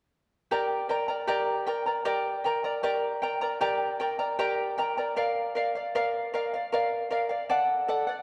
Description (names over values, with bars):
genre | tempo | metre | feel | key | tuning
andean folk | 77 BPM | 3/4 | straight | G minor pentatonic | A4 = 440 Hz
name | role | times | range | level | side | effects
charango | accompaniment | 0.5-8.2 s | G4 to Bb5 | -28 LUFS | equal | none
room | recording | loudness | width
wet concert hall reverb, RT60 2.1 s | dark, warm production | -29 LUFS | mono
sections
0.5-8.2 A section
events
none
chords
0.5 Gm; 5.2 Bb; 7.5 D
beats
| 0.52 1.29 2.07 | 2.84 3.62 4.40 | 5.17 5.95 6.72 | 7.49